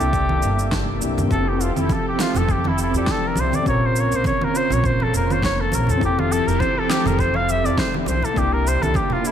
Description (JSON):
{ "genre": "sunset chillout", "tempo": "102 BPM", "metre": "4/4", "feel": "swing 55% on 16ths", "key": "F major", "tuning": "A4 = 440 Hz", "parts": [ { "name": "clear flugelhorn", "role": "melody", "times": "0.0-9.3 s", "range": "E4 to F5", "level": "-23 LUFS", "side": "left 1 dB", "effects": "digital delay, shimmer reverb" }, { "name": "soft electric-piano-like synth keys", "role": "accompaniment", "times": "0.0-9.3 s", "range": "Bb3 to D5", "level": "-25 LUFS", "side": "moving between left 6 dB and right 7 dB", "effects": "chorus, auto-pan, shimmer reverb" }, { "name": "lush unison pad", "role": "sustained chords", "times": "0.0-9.3 s", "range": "C3 to E5", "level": "-28 LUFS", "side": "left 2 dB", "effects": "chorus, phaser, shimmer reverb" }, { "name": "upright bass", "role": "bass", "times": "0.0-8.9 s", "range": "F1 to F2", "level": "-22 LUFS", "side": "equal", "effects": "none" }, { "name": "electronic shaker, congas and snare drum", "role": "drums", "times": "0.0-9.3 s", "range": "none", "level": "-27 LUFS", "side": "right 2 dB", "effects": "overdrive, studio reverb, gated reverb" }, { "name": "electronic kick drum", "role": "drums", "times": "0.1-9.1 s", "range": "none", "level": "-27 LUFS", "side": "equal", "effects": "overdrive, studio reverb" }, { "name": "congas", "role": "percussion", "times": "1.9-9.2 s", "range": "none", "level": "-31 LUFS", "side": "right 3 dB", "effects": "none" } ], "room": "moderate plate reverb, RT60 1.9 s, studio reverb", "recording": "bright 1980s-style digital production", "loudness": "-17 LUFS", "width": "side -9 dB against mid", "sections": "0.0-9.3 A section", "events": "none", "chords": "0.0 C9; 1.3 Fmaj9; 3.7 Bbmadd9; 6.0 Fmaj9; 8.1 C9", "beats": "0.13 0.72 | 1.30 1.89 2.48 3.07 | 3.66 4.25 4.83 5.42 | 6.01 6.60 7.19 7.78 | 8.36 8.95" }